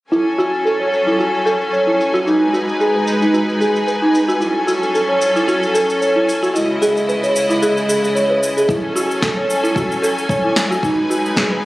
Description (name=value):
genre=organic downtempo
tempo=112 BPM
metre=4/4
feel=swing 54% on 16ths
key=F# dorian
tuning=A4 = 440 Hz
part: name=clear symphonic string section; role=sustained chords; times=0.1-11.7 s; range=C#3 to G#5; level=-19 LUFS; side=equal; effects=sidechain pumping
part: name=folk marimba with medium mallets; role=arpeggios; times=0.1-11.6 s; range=D#4 to C#5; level=-16 LUFS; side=equal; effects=low-pass filter, tape echo
part: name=electronic cabasa and snare drum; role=drums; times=0.1-11.5 s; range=none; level=-24 LUFS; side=equal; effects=low-pass filter on perc, low-pass filter on snare, low-pass filter on room
part: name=electronic kick drum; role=drums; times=8.7-11.5 s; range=none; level=-24 LUFS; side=equal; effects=none
room=moderate huge ambient reverb, RT60 4.1 s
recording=recorded on a phone in the room, studio reverb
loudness=-14 LUFS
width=side -18 dB against mid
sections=0.1-11.7 A section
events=filter sweep on drum 0.1-11.7; filter sweep on marimba 0.1-11.7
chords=0.1 F#m7; 2.3 G#m7; 4.4 F#m7; 6.5 C#m; 8.7 F#m7; 10.8 G#m7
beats=| 0.12 0.66 1.19 1.73 | 2.26 2.80 3.33 3.87 | 4.41 4.94 5.48 6.01 | 6.55 7.08 7.62 8.15 | 8.69 9.23 9.76 10.30 | 10.83 11.37